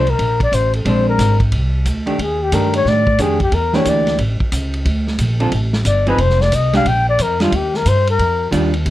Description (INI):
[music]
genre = jazz, small-group swing and bop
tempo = 180 BPM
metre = 4/4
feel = swing 64% on 8ths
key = unclear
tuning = A4 = 437 Hz
[part]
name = breathy flugelhorn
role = melody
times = 0.0-8.5 s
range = F4 to G5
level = -17 LUFS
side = left 3 dB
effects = none
[part]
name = vintage hollow-body jazz guitar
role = accompaniment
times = 0.0-8.7 s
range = D3 to A4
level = -19 LUFS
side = right 1 dB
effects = none
[part]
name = upright bass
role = bass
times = 0.0-8.9 s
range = F1 to A2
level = -17 LUFS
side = equal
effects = none
[part]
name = vintage drum kit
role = drums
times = 0.1-8.9 s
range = hi-hat, kick drum, ride cymbal, snare drum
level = -23 LUFS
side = equal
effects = none
[sound]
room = light reverb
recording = dark, warm production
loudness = -14 LUFS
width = side -15 dB against mid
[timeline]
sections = 0.0-8.9 A section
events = flugelhorn solo 0.0-8.9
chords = 0.0 Bbmaj7(no3); 0.9 Bb9; 2.2 Ebmaj9#11; 3.5 Em7b5; 4.2 A; 4.9 Dm7; 6.2 Fm; 6.9 Bb6; 7.5 Ebmaj9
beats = 0.18 0.52 | 0.85 1.19 1.52 1.85 | 2.19 2.52 2.86 3.19 | 3.52 3.86 4.19 4.53 | 4.86 5.19 5.53 5.86 | 6.19 6.53 6.86 7.19 | 7.53 7.86 8.20 8.53 | 8.86